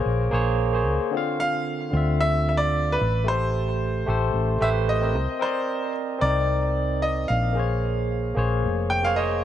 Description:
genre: sunset chillout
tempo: 112 BPM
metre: 4/4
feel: swing 53% on 16ths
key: D minor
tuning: A4 = 441 Hz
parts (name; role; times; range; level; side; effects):
- bright grand piano; melody; 0.0-9.4 s; Bb4 to G5; -26 LUFS; equal; tape echo
- barky tine electric piano; accompaniment; 0.0-9.4 s; D3 to F5; -26 LUFS; moving between left 6 dB and right 5 dB; auto-pan, tape echo
- hollow-body short-scale fingered electric bass; bass; 0.1-9.4 s; F1 to D2; -24 LUFS; equal; none
room: light reverb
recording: none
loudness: -21 LUFS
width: side -11 dB against mid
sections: 0.0-9.4 A section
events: none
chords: 0.0 Bbm9; 1.1 Dm9; 3.0 Am9; 5.2 Cm9; 7.6 Bbm9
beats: 0.06 0.60 | 1.13 1.67 2.21 2.74 | 3.28 3.81 4.35 4.88 | 5.42 5.96 6.49 7.03 | 7.56 8.10 8.63 9.17

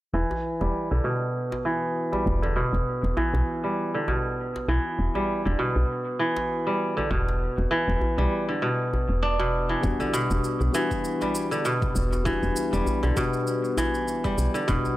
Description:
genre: organic downtempo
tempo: 99 BPM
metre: 4/4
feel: swing 56% on 16ths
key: E minor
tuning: A4 = 443 Hz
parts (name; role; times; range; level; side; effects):
- kora; arpeggios; 0.1-15.0 s; B2 to D4; -25 LUFS; right 1 dB; low-pass filter, analog delay
- woody FM bass; bass; 0.1-14.8 s; E1 to B1; -25 LUFS; equal; none
- djembe; percussion; 0.3-15.0 s; none; -33 LUFS; equal; none
- felt-muted upright piano; accompaniment; 9.8-15.0 s; G3 to F#4; -30 LUFS; left 5 dB; sidechain pumping, analog delay
- cabasa; drums; 9.8-15.0 s; none; -39 LUFS; equal; overdrive
- electronic kick drum; drums; 9.8-14.8 s; none; -29 LUFS; equal; none
room: light reverb, small room ambience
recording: dry, gritty hardware recording, transformer saturation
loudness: -23 LUFS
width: side -16 dB against mid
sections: 0.1-15.0 A section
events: filter sweep on kora 0.1-15.0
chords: 0.1 Em7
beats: | 0.14 0.75 1.35 1.96 | 2.56 3.17 3.78 4.38 | 4.99 5.59 6.20 6.81 | 7.41 8.02 8.62 9.23 | 9.84 10.44 11.05 11.65 | 12.26 12.87 13.47 14.08 | 14.69

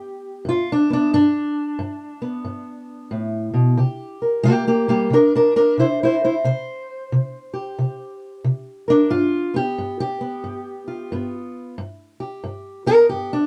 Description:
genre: acoustic country blues, solo or duo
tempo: 90 BPM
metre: 4/4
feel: swing 64% on 8ths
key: G mixolydian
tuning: A4 = 440 Hz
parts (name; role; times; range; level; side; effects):
- fingerpicked steel-string acoustic guitar; solo; 0.0-13.5 s; G2 to C5; -21 LUFS; equal; none
room: moderate booth ambience, RT60 0.2 s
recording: dark, warm production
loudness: -20 LUFS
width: mono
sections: 0.0-13.5 A section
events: steel-string acoustic guitar solo 0.0-13.5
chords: 0.0 G; 3.8 C7(no3); 9.1 G7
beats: 0.47 | 1.14 1.80 2.46 3.13 | 3.79 4.46 5.12 5.79 | 6.45 7.12 7.78 8.45 | 9.11 9.77 10.44 11.10 | 11.77 12.43 13.09

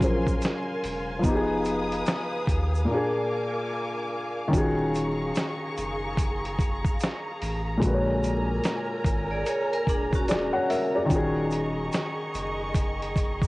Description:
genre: lo-fi hip hop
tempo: 73 BPM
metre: 4/4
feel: swing 63% on 16ths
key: unclear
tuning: A4 = 440 Hz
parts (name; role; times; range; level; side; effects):
- felt-muted upright piano; accompaniment; 0.0-13.5 s; Bb2 to F#5; -28 LUFS; left 1 dB; cassette tape
- warm studio string section; sustained chords; 0.0-13.5 s; Ab4 to Eb6; -32 LUFS; equal; none
- saturated sub bass; bass; 0.0-13.5 s; Eb1 to Eb2; -32 LUFS; equal; transformer saturation
- dusty soul sampler-style drum kit; drums; 0.0-13.5 s; hi-hat, kick drum, snare drum; -27 LUFS; equal; cassette tape
- egg shaker; percussion; 0.0-13.5 s; none; -47 LUFS; right 5 dB; none
- vibraphone with hard mallets; second line; 9.3-11.1 s; C#4 to D5; -30 LUFS; right 1 dB; tape echo
room: light reverb, small room ambience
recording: home recording on cassette, vinyl crackle, nothing above 10.5 kHz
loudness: -24 LUFS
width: side -21 dB against mid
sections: 0.0-13.5 A section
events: break 2.9-4.5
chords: 0.0 Gbmaj9#11; 1.2 Fm7b5; 2.9 Bb7; 4.5 Ebm11; 7.8 Bb7alt; 11.1 Ebm11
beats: 0.42 | 1.24 2.06 2.88 3.71 | 4.53 5.35 6.17 6.99 | 7.82 8.64 9.46 10.28 | 11.10 11.93 12.75

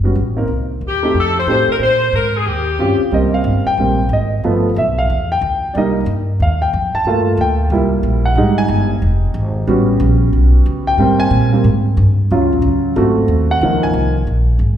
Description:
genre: jazz, big band swing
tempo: 183 BPM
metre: 4/4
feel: swing 63% on 8ths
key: Ab major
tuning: A4 = 440 Hz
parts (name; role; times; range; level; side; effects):
- clear concert grand piano; accompaniment; 0.0-14.2 s; Eb3 to A5; -16 LUFS; right 1 dB; none
- upright bass; bass; 0.0-14.8 s; F1 to Bb2; -16 LUFS; equal; none
- warm saxophone section; melody; 0.9-3.0 s; G4 to C5; -16 LUFS; left 2 dB; none
room: wet recital hall reverb, RT60 1.7 s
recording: recorded in a church or concert hall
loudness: -13 LUFS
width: side -10 dB against mid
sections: 0.0-3.1 A section; 3.1-13.6 B section; 13.6-14.8 B section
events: grand piano solo 3.1-14.8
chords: 0.5 Cm6; 1.1 F7; 1.8 Abadd9; 2.5 Eb13; 3.1 Abmaj9; 4.4 G7; 5.7 Cm7; 7.1 Gm7; 7.7 C7; 8.4 Fm7; 9.7 A13; 11.0 Abmaj9; 12.3 Ebm7; 13.0 Ab7b9; 13.6 Db69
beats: 0.16 | 0.49 0.82 1.15 1.48 | 1.81 2.13 2.46 2.79 | 3.12 3.45 3.78 4.11 | 4.43 4.76 5.09 5.42 | 5.75 6.07 6.40 6.73 | 7.06 7.38 7.71 8.04 | 8.37 8.70 9.02 9.35 | 9.68 10.01 10.33 10.66 | 10.99 11.32 11.64 11.97 | 12.30 12.63 12.95 13.28 | 13.61 13.94 14.26 14.59

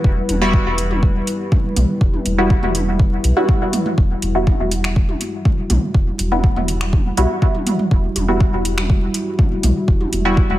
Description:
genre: dub techno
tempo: 122 BPM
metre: 4/4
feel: straight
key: E minor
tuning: A4 = 437 Hz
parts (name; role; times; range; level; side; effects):
- dark analog pad; sustained chords; 0.0-10.6 s; G3 to B4; -24 LUFS; equal; chorus, sidechain pumping
- soft dub sub bass; bass; 0.0-10.6 s; E1 to B1; -20 LUFS; equal; tube saturation, sidechain pumping
- electronic kick drum; drums; 0.0-10.5 s; none; -16 LUFS; equal; overdrive, studio reverb
- deep house drum kit; drums; 0.3-10.2 s; finger snaps, hi-hat; -24 LUFS; equal; overdrive, studio reverb
- electronic toms; percussion; 0.3-10.6 s; none; -26 LUFS; right 1 dB; sidechain pumping on toms, studio reverb, dub echo
- filtered dub chord stab; stabs; 0.4-10.4 s; G3 to F#4; -21 LUFS; equal; chorus, phaser, sidechain pumping, dub echo
room: light reverb, digital ambience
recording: vinyl crackle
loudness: -15 LUFS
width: side -14 dB against mid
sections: 0.0-10.6 A section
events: none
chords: 0.0 Emadd9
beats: | 0.04 0.54 1.03 1.52 | 2.01 2.50 2.99 3.49 | 3.98 4.47 4.96 5.45 | 5.95 6.44 6.93 7.42 | 7.91 8.40 8.90 9.39 | 9.88 10.37

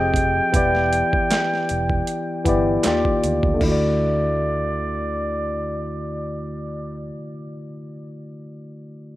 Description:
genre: R&B, neo-soul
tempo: 78 BPM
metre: 4/4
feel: swing 54% on 16ths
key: D major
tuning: A4 = 444 Hz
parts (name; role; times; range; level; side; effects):
- trumpet with plunger mute; melody; 0.0-7.1 s; D5 to G5; -25 LUFS; right 1 dB; none
- barky tine electric piano; accompaniment; 0.0-9.2 s; D3 to Eb5; -23 LUFS; left 1 dB; overdrive
- fretless electric bass; bass; 0.0-7.1 s; E1 to Eb2; -27 LUFS; right 1 dB; none
- dusty soul sampler-style drum kit; drums; 0.1-3.8 s; crash cymbal, handclaps, hi-hat, kick drum, snare drum; -24 LUFS; right 1 dB; overdrive
room: little or no reverb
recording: rough home demo mix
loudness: -19 LUFS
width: side -16 dB against mid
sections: 0.0-3.6 A section; 3.6-6.7 B section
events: none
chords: 0.0 Fm9; 0.5 Em7; 2.8 Ebmaj9; 3.6 Dadd9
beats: | 0.53 1.30 2.07 2.84 | 3.61 4.38 5.15 5.92

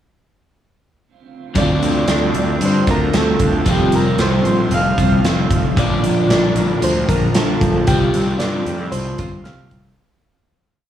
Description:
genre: rock, shoegaze and dream pop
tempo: 114 BPM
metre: 4/4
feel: straight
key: unclear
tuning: A4 = 440 Hz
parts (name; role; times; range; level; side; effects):
- overdriven semi-hollow guitar; riff; 1.5-10.0 s; Bb2 to F4; -21 LUFS; left 5 dB; ensemble chorus
- soft struck synth lead; melody; 1.6-9.8 s; G4 to F5; -22 LUFS; right 1 dB; chorus, tape echo
- twangy electric guitar; arpeggios; 1.6-10.0 s; F3 to F4; -28 LUFS; right 1 dB; wide subtle chorus, tape echo
- clean electric guitar; riff; 1.6-10.0 s; Bb2 to F4; -24 LUFS; right 7 dB; reverse reverb
- fuzz picked electric bass; bass; 1.6-9.9 s; F1 to G2; -20 LUFS; equal; overdrive
- big rock drum kit; drums; 1.6-9.8 s; hi-hat, kick drum, snare drum; -20 LUFS; equal; none
room: small room ambience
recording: none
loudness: -14 LUFS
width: side -10 dB against mid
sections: 1.6-10.0 verse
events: fade-out 7.9-10.0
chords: 1.6 Dm7; 3.7 Fsus2; 5.8 Bb; 7.9 Csus4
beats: | 1.55 2.08 2.61 3.13 | 3.66 4.19 4.71 5.24 | 5.77 6.30 6.82 7.35 | 7.88 8.40 8.93 9.46

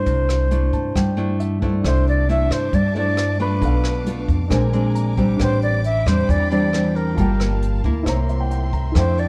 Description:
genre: bossa nova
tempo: 135 BPM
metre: 4/4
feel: straight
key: C major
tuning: A4 = 439 Hz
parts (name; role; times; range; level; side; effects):
- silver concert flute; melody; 0.0-9.3 s; Bb4 to E5; -26 LUFS; equal; plate reverb
- nylon-string guitar; accompaniment; 0.0-9.3 s; A2 to A4; -24 LUFS; equal; none
- warm baby grand piano; accompaniment; 0.0-9.3 s; D4 to Bb5; -32 LUFS; equal; none
- upright bass; bass; 0.0-9.3 s; G1 to G2; -23 LUFS; equal; none
- vintage brush drum kit; drums; 0.1-9.3 s; hi-hat, kick drum, rim click; -29 LUFS; equal; none
- warm studio string section; sustained chords; 1.8-9.3 s; A4 to D6; -39 LUFS; equal; none
room: light reverb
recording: dark, warm production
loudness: -19 LUFS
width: mono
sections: 0.0-1.8 A section; 1.8-9.3 A section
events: grand piano fill 0.5-1.8, 4.7-5.4, 8.1-9.0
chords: 0.0 C69; 3.6 Bm7b5; 4.5 Bb9; 5.4 Am11; 7.2 Gm9; 8.1 C7b9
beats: | 0.06 0.50 0.95 1.39 | 1.84 2.28 2.73 3.17 | 3.62 4.06 4.51 4.95 | 5.40 5.84 6.29 6.73 | 7.17 7.62 8.06 8.51 | 8.95

